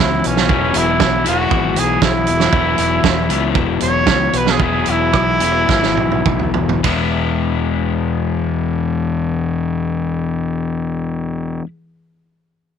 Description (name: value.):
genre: indie rock.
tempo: 100-118 BPM.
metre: 4/4.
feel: straight.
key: E major.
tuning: A4 = 440 Hz.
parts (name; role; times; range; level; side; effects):
clear trumpet; melody; 0.0-6.5 s; C#4 to C#5; -18 LUFS; right 2 dB; slapback echo.
crunchy overdriven guitar; riff; 0.0-11.7 s; E3 to E4; -19 LUFS; left 10 dB; none.
fuzz fingered electric bass; bass; 0.0-11.6 s; E1 to C#2; -21 LUFS; right 1 dB; overdrive.
loose indie drum kit; drums; 0.2-7.0 s; hi-hat, kick drum, ride cymbal, rim click, snare drum, toms; -18 LUFS; right 6 dB; none.
room: light reverb, small room ambience.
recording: 1960s-style stereo with parts hard left and right.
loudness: -14 LUFS.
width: side -8 dB against mid.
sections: 0.0-6.8 A section; 6.8-11.6 B section.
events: trumpet solo 0.0-6.8; slowing down 2.5-6.8; drum fill 5.7-6.8.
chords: 0.0 Esus2; 6.8 E.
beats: | 0.50 1.01 1.52 2.02 | 2.53 3.04 3.55 4.07 | 4.60 5.14 5.69 6.26 | 6.85 7.44 8.04 8.64 | 9.23 9.83 10.43 11.03.